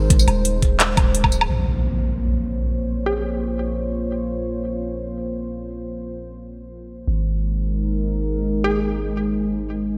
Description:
half-time drum and bass; free time; Bb minor; A4 = 439 Hz
dark analog pad; sustained chords; 0.0-10.0 s; Ab3 to Db5; -28 LUFS; equal; chorus, sidechain pumping
long sustained 808-style bass; bass; 0.0-10.0 s; Eb1 to Bb1; -27 LUFS; equal
drum and bass drum kit; drums; 0.1-1.5 s; handclaps, hi-hat, tambourine, woodblock; -23 LUFS; equal
electronic kick drum; drums; 0.1-1.3 s; -19 LUFS; equal
impact and riser; sound effects; 1.5-2.9, 9.9-10.0 s; -30 LUFS; equal
hollow square pluck; melody; 3.1-3.3, 8.6-8.9 s; Ab4; -29 LUFS; equal; chorus, cassette tape, delay
light reverb, digital ambience; bright 1980s-style digital production; -22 LUFS; mono
0.0-1.5 A section; 1.5-10.0 B section
drop 0.0-1.5; impact 1.5-2.9
0.0 Ab; 1.5 Bbm; 7.1 Ab
free time

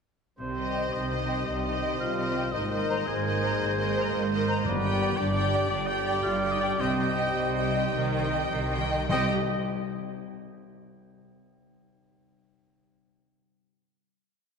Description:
cinematic, heroic adventure film score; 102-115 BPM (dotted quarters); 12/8; straight; C minor; A4 = 436 Hz
warm oboe; second line; 0.4-9.3 s; B4 to Ab5; -36 LUFS; right 2 dB
clear trombone section; sustained chords; 0.4-9.3 s; C3 to Bb3; -39 LUFS; right 2 dB
mellow French horn section; sustained chords; 0.4-9.3 s; B3 to Ab4; -36 LUFS; left 5 dB
concert harp; arpeggios; 0.4-11.4 s; G2 to G5; -39 LUFS; left 8 dB
warm trumpet; stabs; 0.4-9.3 s; C5 to Eb5; -34 LUFS; right 1 dB
warm studio double bass section; bass; 0.4-9.3 s; G1 to C2; -34 LUFS; right 2 dB
warm symphonic cello section; bass; 0.4-9.3 s; G2 to Eb3; -33 LUFS; right 4 dB
warm symphonic violin section; melody; 0.6-9.3 s; Eb5 to G5; -35 LUFS; left 4 dB
warm studio violin section; second line; 0.6-9.3 s; C5 to Eb5; -39 LUFS; left 2 dB
rich symphonic viola section; accompaniment; 0.6-9.3 s; G4 to Bb4; -37 LUFS; right 2 dB
bright flute section; second line; 0.7-9.3 s; G5 to Bb5; -39 LUFS; equal
warm clarinet; second line; 0.8-9.3 s; C5 to Eb5; -36 LUFS; left 2 dB
timpani; percussion; 4.6-5.1, 9.1-9.3 s; G2 to C3; -34 LUFS; left 2 dB
wet concert hall reverb, RT60 2.5 s; -25 LUFS; side -6 dB against mid
0.4-9.1 theme; 9.1-11.4 final chord
slowing down 5.4-9.1
0.4 Cm; 2.5 Abadd9; 4.7 G; 6.8 Cm
| 0.39 0.93 1.47 2.00 | 2.54 3.08 3.61 4.14 | 4.66 5.18 5.71 6.25 | 6.81 7.38 7.94 8.52 | 9.10 9.67 10.24 10.81

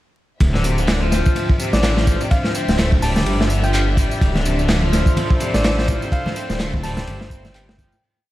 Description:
breakbeat, breaks; 126 BPM; 4/4; swing 57% on 16ths; D minor; A4 = 437 Hz
warm studio string section; sustained chords; 0.4-8.0 s; D3 to E5; -27 LUFS; equal; sidechain pumping
phased detuned saw bass; bass; 0.4-7.9 s; D1 to A1; -20 LUFS; equal; phaser
crunchy breakbeat drum kit; drums; 0.4-7.9 s; hi-hat, kick drum, ride cymbal, snare drum; -19 LUFS; equal; tape echo
electronic tambourine and handclaps; drums; 0.4-8.0 s; -30 LUFS; right 1 dB; tape echo
raw garage guitar; riff; 0.5-7.9 s; C3 to C4; -26 LUFS; left 1 dB; overdrive, vintage 12-bit sampler grit, tape echo
soft struck synth lead; melody; 1.7-8.0 s; D5 to A5; -28 LUFS; equal; chorus, telephone sound, tape echo
congas; percussion; 4.4-7.9 s; -28 LUFS; equal
clear horn section; stabs; 4.9-8.0 s; E4 to C5; -30 LUFS; right 2 dB; tape echo
light reverb, small room ambience; echo-heavy mix, vinyl crackle; -16 LUFS; side -16 dB against mid
0.4-8.0 drop
drop 0.4-8.0; fade-out 5.5-8.0
0.4 Dm9
| 0.41 0.88 1.36 1.83 | 2.31 2.79 3.26 3.74 | 4.21 4.69 5.17 5.64 | 6.12 6.60 7.07 7.55

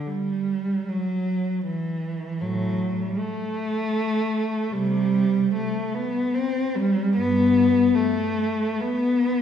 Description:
classical, free, expressive piece for unaccompanied cello; 76 BPM; 3/4; uneven beats, rubato; A4 = 439 Hz
warm cello; solo; 0.0-9.4 s; G2 to C4; -21 LUFS; equal
wet scoring stage reverb, RT60 1.8 s; recorded in a church or concert hall; -21 LUFS; side -8 dB against mid
0.0-9.4 A section
| 0.09 0.89 1.65 | 2.43 3.19 3.95 | 4.72 5.53 6.34 | 7.15 7.95 8.80

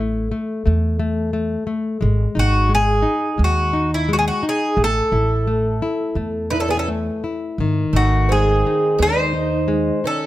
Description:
fado-style ballad; 87 BPM; 4/4; rubato; A4 = 439 Hz
nylon-string guitar; accompaniment; 0.0-10.3 s; D#3 to E4; -23 LUFS; left 3 dB
upright bass; bass; 0.0-9.9 s; G#1 to E2; -20 LUFS; right 1 dB
Irish bouzouki; melody; 2.4-10.3 s; E4 to B#4; -20 LUFS; equal
picked twelve-string acoustic guitar; second line; 6.5-10.3 s; A3 to D#4; -25 LUFS; right 7 dB
little or no reverb; close, detailed microphones; -17 LUFS; side -15 dB against mid
0.0-10.3 A section
0.0 A5; 2.0 G#5; 4.8 A5; 7.6 G#
0.66 1.34 | 2.02 2.70 3.39 4.08 | 4.77 5.46 6.16 6.87 | 7.58 8.29 8.99 9.69

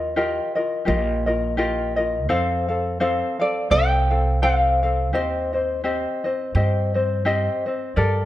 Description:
Hawaiian; 85 BPM; 4/4; swing 57% on 8ths; A4 = 440 Hz
tenor ukulele; melody; 0.0-5.8 s; C5 to G5; -22 LUFS; equal
tenor ukulele; accompaniment; 0.0-8.3 s; C4 to F5; -22 LUFS; left 2 dB
upright bass; bass; 0.0-8.3 s; Bb1 to G2; -23 LUFS; right 1 dB
moderate recital hall reverb, RT60 1.4 s; -19 LUFS; side -14 dB against mid
0.0-8.3 A section
0.0 Ebadd9; 2.3 F; 5.1 Cm/Eb
0.16 0.87 1.58 | 2.29 3.00 3.71 4.42 | 5.12 5.83 6.54 7.25 | 7.96

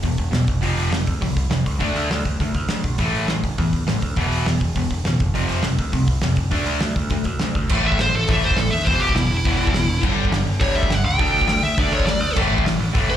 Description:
punk rock; 204 BPM; 4/4; straight; A4 = 440 Hz
distorted electric guitar; riff; 0.0-13.2 s; E2 to D4; -23 LUFS; equal; distortion
growling picked electric bass; bass; 0.0-13.2 s; E1 to E2; -23 LUFS; equal; overdrive
loose indie drum kit; drums; 0.0-13.0 s; crash cymbal, hi-hat, kick drum, snare drum; -23 LUFS; equal
high-gain lead guitar; melody; 7.9-13.2 s; E4 to G5; -22 LUFS; equal; distortion, slapback echo, ping-pong delay
little or no reverb; live gig heard through the venue's PA, club reverb; -18 LUFS; side -10 dB against mid
0.0-7.7 A section; 7.7-13.2 B section
lead electric guitar solo 7.7-13.2
0.5 F5; 1.8 D5; 3.0 A5; 4.2 E5; 5.2 F5; 6.5 D5; 7.7 A5; 8.9 E5; 10.0 G5; 11.2 D5; 12.4 A5
0.03 0.32 | 0.62 0.92 1.21 1.51 | 1.80 2.10 2.39 2.69 | 2.98 3.28 3.58 3.87 | 4.17 4.46 4.75 5.05 | 5.34 5.64 5.93 6.23 | 6.52 6.82 7.11 7.40 | 7.70 7.99 8.28 8.57 | 8.86 9.15 9.45 9.74 | 10.03 10.32 10.61 10.90 | 11.19 11.49 11.78 12.07 | 12.36 12.65 12.94

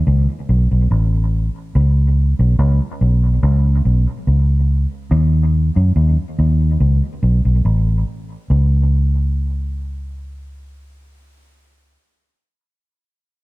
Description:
reggae; 71 BPM; 4/4; straight; A4 = 440 Hz
vintage muted fingered electric bass; solo; 0.1-12.0 s; A1 to F#2; -14 LUFS; equal; dub echo
little or no reverb; -14 LUFS; side -20 dB against mid
0.0-8.5 A section; 8.5-11.9 B section
0.05 0.89 | 1.74 2.58 3.42 4.27 | 5.11 5.96 6.80 7.64 | 8.49 9.33 10.18 11.02

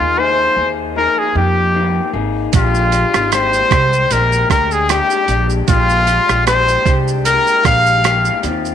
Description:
indie pop, bedroom pop; 76 BPM; 4/4; swing 55% on 16ths; A4 = 440 Hz
clear trumpet; melody; 0.0-8.4 s; F4 to F5; -14 LUFS; left 1 dB; analog chorus, slapback echo
electric guitar through a small old amp; accompaniment; 0.0-8.7 s; Bb2 to Ab4; -22 LUFS; left 12 dB; wide subtle chorus, warbly pitch drift
upright bass; bass; 0.0-8.7 s; Ab1 to F2; -18 LUFS; right 1 dB
boom bap sampler-style drum kit; drums; 2.5-8.7 s; hi-hat, kick drum, rim click, shaker; -18 LUFS; right 6 dB
light reverb, digital ambience; 1960s-style stereo with parts hard left and right; -12 LUFS; side -9 dB against mid
0.0-8.7 A section
0.0 Fm11; 2.5 Bb13
0.18 0.96 1.75 | 2.54 3.32 4.11 4.89 | 5.68 6.47 7.25 8.04

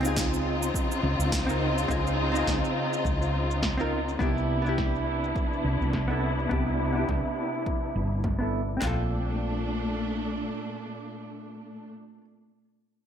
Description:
sunset chillout; 104 BPM; 4/4; swing 56% on 16ths; A4 = 440 Hz
hollow-body jazz guitar; accompaniment; 0.0-12.2 s; B3 to Bb4; -31 LUFS; right 1 dB; auto-pan, low-pass filter, tape echo
warm studio string section; sustained chords; 0.0-11.9 s; Bb2 to F4; -30 LUFS; left 1 dB; low-pass filter
woody fretless electric bass; bass; 0.0-10.5 s; G1 to Db2; -29 LUFS; equal
electronic shaker and snare drum; drums; 0.0-8.8 s; -35 LUFS; right 1 dB; low-pass filter on hats, low-pass filter on perc, low-pass filter on snare, low-pass filter on room
deep house drum kit; drums; 0.2-9.0 s; handclaps, kick drum, snare drum, toms; -32 LUFS; equal
moderate plate reverb, RT60 1.6 s; dreamy mix soaked in reverb; -25 LUFS; side -8 dB against mid
0.0-8.8 A section; 8.8-11.1 B section
filter sweep on drum 0.0-8.8; filter sweep on string section 0.0-8.8
0.0 Dbmaj9; 4.2 Cmaj9; 8.8 Bbmaj7
0.17 0.74 1.32 | 1.90 2.47 3.05 3.63 | 4.20 4.78 5.36 5.93 | 6.51 7.09 7.67 8.24 | 8.82 9.40 9.97 10.55

